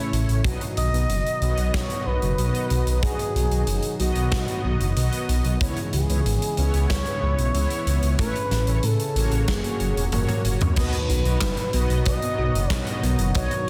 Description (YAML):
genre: synthwave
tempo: 93 BPM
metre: 4/4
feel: straight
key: B major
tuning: A4 = 440 Hz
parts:
  - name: warm analog pad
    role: sustained chords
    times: 0.0-13.7 s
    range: A2 to F#4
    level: -33 LUFS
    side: equal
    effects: chorus, sidechain pumping
  - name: mellow synth brass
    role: stabs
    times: 0.0-13.5 s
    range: A3 to D#5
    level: -34 LUFS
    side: equal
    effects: chorus, delay
  - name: dark detuned saw bass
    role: bass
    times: 0.1-13.7 s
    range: E1 to A2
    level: -26 LUFS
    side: equal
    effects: sidechain pumping
  - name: big rock drum kit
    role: drums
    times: 0.1-13.6 s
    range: crash cymbal, handclaps, hi-hat, snare drum, toms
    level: -33 LUFS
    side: equal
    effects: soft clipping on snare
  - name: kick drum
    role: drums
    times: 0.4-13.5 s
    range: none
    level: -32 LUFS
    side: equal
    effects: none
  - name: expressive synth lead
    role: melody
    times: 0.8-13.7 s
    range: F#4 to D#5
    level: -31 LUFS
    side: equal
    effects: chorus, tape echo
  - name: thumb-piano-like synth pluck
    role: arpeggios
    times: 10.8-13.7 s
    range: B3 to B4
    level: -37 LUFS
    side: equal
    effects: chorus, vintage 12-bit sampler grit, delay
room: light reverb, studio reverb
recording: dense, heavily limited modern master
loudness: -23 LUFS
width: mono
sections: 0.0-10.8 A section; 10.8-13.7 B section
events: drum fill 10.1-10.8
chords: 0.4 B; 5.6 C#m7; 8.2 A; 9.5 F#; 10.8 B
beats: | 0.45 1.09 1.74 2.38 | 3.03 3.67 4.32 4.96 | 5.61 6.25 6.90 7.54 | 8.19 8.84 9.48 10.12 | 10.77 11.42 12.06 12.71 | 13.35